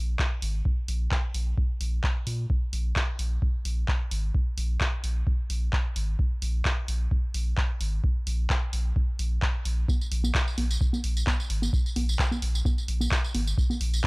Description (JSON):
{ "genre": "acid house", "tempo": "130 BPM", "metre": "4/4", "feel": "straight", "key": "unclear", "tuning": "A4 = 445 Hz", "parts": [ { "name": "round analog bass", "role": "bass", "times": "0.0-14.0 s", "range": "Ab1 to Bb2", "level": "-27 LUFS", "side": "equal", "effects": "sidechain pumping" }, { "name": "electronic kick drum", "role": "drums", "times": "0.2-14.1 s", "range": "none", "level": "-26 LUFS", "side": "equal", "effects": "none" }, { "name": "punchy analog drum machine", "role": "drums", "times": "0.2-14.1 s", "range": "congas, handclaps, hi-hat, tambourine", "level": "-31 LUFS", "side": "equal", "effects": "none" } ], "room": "little or no reverb", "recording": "dry, gritty hardware recording, cassette tape", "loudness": "-25 LUFS", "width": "side -28 dB against mid", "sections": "0.0-9.9 A section; 9.9-14.1 B section", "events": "drop 9.9-14.1", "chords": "none" }